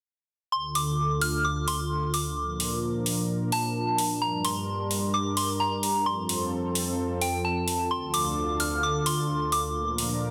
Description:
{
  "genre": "EDM, festival progressive house",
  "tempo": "130 BPM",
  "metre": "4/4",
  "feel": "straight",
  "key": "D minor",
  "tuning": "A4 = 443 Hz",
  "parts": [
    { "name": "soft synth bell", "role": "melody", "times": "0.5-10.2 s", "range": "G5 to F6", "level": "-31 LUFS", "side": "equal", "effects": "chorus, phaser, digital delay" },
    { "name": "lush unison pad", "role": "sustained chords", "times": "0.5-10.3 s", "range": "D2 to Bb4", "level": "-31 LUFS", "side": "equal", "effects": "chorus" },
    { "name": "electronic hi-hat", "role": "drums", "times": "0.8-10.1 s", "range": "none", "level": "-33 LUFS", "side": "equal", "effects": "none" }
  ],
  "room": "light reverb, digital ambience",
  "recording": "dense, heavily limited modern master",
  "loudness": "-27 LUFS",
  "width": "mono",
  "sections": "0.5-10.3 A section",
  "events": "filter sweep on analog synth pad 0.5-10.3",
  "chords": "0.5 Dm; 2.4 Bb; 4.2 Gm; 6.1 F; 7.9 Dm; 9.8 Bb"
}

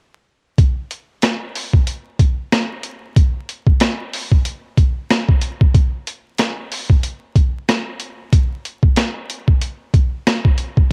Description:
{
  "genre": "hip hop",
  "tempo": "93 BPM",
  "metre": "4/4",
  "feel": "swing 57% on 16ths",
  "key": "none",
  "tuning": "none",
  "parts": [
    { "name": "boom bap sampler-style drum kit", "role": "drums", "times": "0.6-10.9 s", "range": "hi-hat, kick drum, rim click, snare drum", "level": "-16 LUFS", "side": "equal", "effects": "cassette tape" }
  ],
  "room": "digital ambience",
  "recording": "home recording on cassette, vinyl crackle",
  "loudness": "-18 LUFS",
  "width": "mono",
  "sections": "0.6-10.9 A section",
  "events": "none",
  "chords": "none"
}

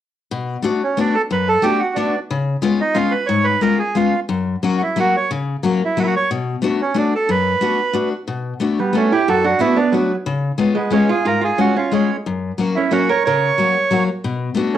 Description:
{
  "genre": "musette",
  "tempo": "181 BPM",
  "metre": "3/4",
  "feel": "straight",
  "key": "B minor",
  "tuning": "A4 = 441 Hz",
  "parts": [
    { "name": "picked steel-string acoustic guitar", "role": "accompaniment", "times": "0.3-14.7 s", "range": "F#2 to F#4", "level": "-19 LUFS", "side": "left 4 dB", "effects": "cassette tape" },
    { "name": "bandoneon", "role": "melody", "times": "0.8-14.8 s", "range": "B3 to C#5", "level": "-18 LUFS", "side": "right 4 dB", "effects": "none" },
    { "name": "archtop guitar, miked and amplified", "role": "second line", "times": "8.8-14.8 s", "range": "F#3 to A#4", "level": "-19 LUFS", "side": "right 6 dB", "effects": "cassette tape" }
  ],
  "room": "wet studio reverb, RT60 0.6 s",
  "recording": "home recording on cassette",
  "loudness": "-15 LUFS",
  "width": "side -11 dB against mid",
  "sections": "0.3-8.3 A section; 8.3-14.8 A section",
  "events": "none",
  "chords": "0.3 Bm7; 2.3 C#7; 4.3 F#; 6.3 Bm7; 10.3 C#7; 12.3 F#; 14.2 Bm7"
}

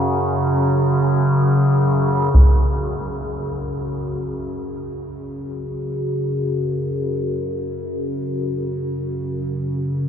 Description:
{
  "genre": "dark ambient drone",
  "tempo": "free time",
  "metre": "none",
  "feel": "none",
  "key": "unclear",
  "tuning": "A4 = 440 Hz",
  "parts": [
    { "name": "overtone-sweeping drone", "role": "drone", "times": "0.0-10.1 s", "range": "F#2 to C#3", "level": "-20 LUFS", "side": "equal", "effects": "chorus, built-in reverb" },
    { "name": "solo taiko drums", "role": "percussion", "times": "2.3-2.6 s", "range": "none", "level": "-17 LUFS", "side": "equal", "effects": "low-pass filter on perc" }
  ],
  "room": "wet huge ambient reverb, RT60 7.6 s",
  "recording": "dark, warm production",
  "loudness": "-18 LUFS",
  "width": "side -8 dB against mid",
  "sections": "0.0-2.3 A section; 2.3-10.1 B section",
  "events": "none",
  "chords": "0.0 F#5"
}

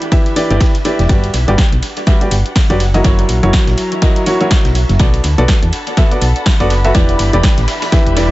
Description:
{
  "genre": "piano house",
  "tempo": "123 BPM",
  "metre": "4/4",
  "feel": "swing 58% on 16ths",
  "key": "unclear",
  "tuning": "A4 = 440 Hz",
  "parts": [
    { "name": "clear upright piano", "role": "riff", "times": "0.0-8.3 s", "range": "E3 to E5", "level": "-16 LUFS", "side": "equal", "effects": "sidechain pumping, tape echo" },
    { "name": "punchy analog drum machine", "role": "drums", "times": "0.0-8.3 s", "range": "hi-hat, snare drum", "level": "-22 LUFS", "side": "equal", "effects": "tape echo" },
    { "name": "muted studio string section", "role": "texture", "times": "0.0-8.3 s", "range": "C#4 to B5", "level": "-26 LUFS", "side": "left 1 dB", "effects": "sidechain pumping" },
    { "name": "dusty soul sampler-style drum kit", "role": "drums", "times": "0.1-8.3 s", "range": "hi-hat, ride cymbal, snare drum", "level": "-28 LUFS", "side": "right 2 dB", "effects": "overdrive, high-pass filter on cymbals, high-pass filter on snare, high-pass filter on hats, tape echo" },
    { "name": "electronic kick drum", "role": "drums", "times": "0.1-8.0 s", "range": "none", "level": "-12 LUFS", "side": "equal", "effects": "none" },
    { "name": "solid FM bass", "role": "bass", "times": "0.5-8.3 s", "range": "E1 to E2", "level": "-14 LUFS", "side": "equal", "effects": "sidechain pumping" },
    { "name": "swell", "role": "sound effects", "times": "8.1-8.3 s", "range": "none", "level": "-24 LUFS", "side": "left 3 dB", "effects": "none" }
  ],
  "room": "light reverb",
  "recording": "echo-heavy mix, nothing above 7.9 kHz",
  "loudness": "-10 LUFS",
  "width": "side -17 dB against mid",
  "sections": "0.0-8.3 A section",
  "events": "swell 8.1",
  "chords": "0.0 Em7; 1.1 Gmaj7; 2.8 F#7; 4.8 Bm7; 6.9 Em7"
}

